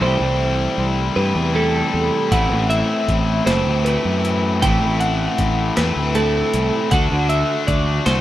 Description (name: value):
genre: indie rock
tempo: 52 BPM (dotted quarters)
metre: 6/8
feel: straight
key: unclear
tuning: A4 = 437 Hz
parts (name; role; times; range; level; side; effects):
- twelve-string electric guitar; melody; 0.0-8.2 s; A4 to G5; -22 LUFS; right 1 dB; none
- biting overdriven guitar; riff; 0.0-8.2 s; A2 to F#4; -22 LUFS; left 6 dB; none
- twelve-string electric guitar; riff; 0.0-8.2 s; A2 to B4; -24 LUFS; right 4 dB; lush chorus
- fuzz fingered electric bass; bass; 0.0-8.2 s; F#1 to G2; -21 LUFS; equal; overdrive
- breakbeat sampler-style drum kit; drums; 2.3-8.2 s; hi-hat, kick drum, snare drum; -22 LUFS; equal; none
room: little or no reverb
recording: rough home demo mix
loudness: -16 LUFS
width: side -13 dB against mid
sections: 0.0-8.2 A section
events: none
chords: 0.0 C6; 2.3 Amadd9; 6.9 D